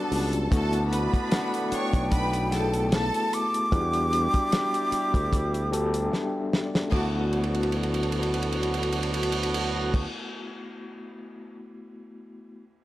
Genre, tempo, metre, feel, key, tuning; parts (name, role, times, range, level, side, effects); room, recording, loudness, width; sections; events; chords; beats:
lush 1970s-style soul; 75 BPM; 4/4; swing 54% on 16ths; D major; A4 = 440 Hz
bright studio violin section; second line; 0.0-10.0 s; F#4 to C#6; -34 LUFS; right 1 dB
overdriven tine electric piano; accompaniment; 0.0-12.6 s; G3 to A5; -31 LUFS; left 2 dB; fast tremolo
dark horn section; stabs; 0.0-10.1 s; D3 to G4; -33 LUFS; right 2 dB
modern bright fingered electric bass; bass; 0.1-10.1 s; B1 to E2; -28 LUFS; equal
warm soul drum kit; drums; 0.1-11.6 s; crash cymbal, hi-hat, kick drum, ride cymbal, snare drum; -28 LUFS; equal
breathy jazz flute; melody; 1.3-6.1 s; F#5 to D6; -28 LUFS; equal
light reverb; -23 LUFS; side -16 dB against mid
0.5-6.9 A section; 6.9-10.1 B section
band accent 0.0-0.5; tine electric piano fill 5.3-6.9; drum fill 6.1-6.9, 7.3-9.9
0.0 Em7 (rootless); 0.5 D6; 3.7 Em7; 6.9 D6
| 0.51 1.31 2.11 2.92 | 3.72 4.52 5.32 6.12 | 6.92 7.72 8.52 9.32